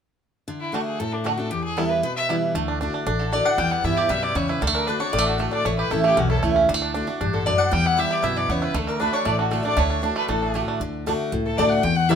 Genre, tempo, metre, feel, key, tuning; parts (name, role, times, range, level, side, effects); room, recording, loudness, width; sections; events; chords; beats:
bluegrass; 232 BPM; 4/4; straight; D major; A4 = 444 Hz
picked steel-string acoustic guitar; accompaniment; 0.5-12.2 s; E2 to F#4; -24 LUFS; equal
clear fiddle; melody; 0.6-12.2 s; D4 to G5; -26 LUFS; left 3 dB
bluegrass banjo; melody; 0.7-12.2 s; D3 to G4; -26 LUFS; right 6 dB
upright bass; bass; 2.5-12.2 s; A1 to G2; -27 LUFS; equal
lap resonator guitar; second line; 3.2-12.2 s; F#4 to G5; -27 LUFS; left 3 dB
moderate studio reverb, RT60 0.8 s; minimal, uncompressed stereo recording; -20 LUFS; side -7 dB against mid
0.5-2.5 A section; 2.5-10.8 B section; 10.8-12.2 B section
0.5 D; 1.5 Em; 2.5 D; 3.6 Em; 4.6 D; 5.7 A; 6.7 D; 7.7 Em; 8.7 D
| 0.48 0.74 1.00 1.26 | 1.51 1.77 2.03 2.29 | 2.55 2.81 3.07 3.33 | 3.58 3.84 4.10 4.36 | 4.62 4.88 5.14 5.39 | 5.65 5.91 6.17 6.43 | 6.68 6.94 7.20 7.46 | 7.72 7.97 8.23 8.49 | 8.75 9.01 9.26 9.52 | 9.78 10.04 10.29 10.55 | 10.81 11.06 11.32 11.58 | 11.84 12.09